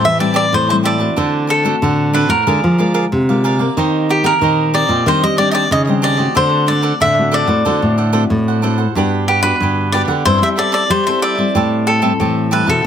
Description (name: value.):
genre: samba.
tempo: 93 BPM.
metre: 4/4.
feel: straight.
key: unclear.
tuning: A4 = 440 Hz.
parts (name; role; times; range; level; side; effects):
cavaquinho; melody; 0.0-12.9 s; G4 to E5; -16 LUFS; left 1 dB; slapback echo.
cavaquinho; accompaniment; 0.0-12.8 s; D4 to A5; -20 LUFS; right 7 dB; none.
nylon-string guitar; accompaniment; 0.0-12.8 s; A2 to A4; -20 LUFS; left 5 dB; none.
nylon-string guitar; bass; 0.0-12.8 s; G2 to G3; -17 LUFS; equal; none.
room: light reverb.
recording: close, detailed microphones.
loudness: -12 LUFS.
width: side -8 dB against mid.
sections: 0.0-12.9 A section.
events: none.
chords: 0.0 Am7; 1.2 D7; 2.5 Bb7/D; 3.8 Eb6; 5.1 Cmadd9/Eb; 6.4 D7; 9.0 Gmaj7; 10.3 C6/G; 11.6 Am7.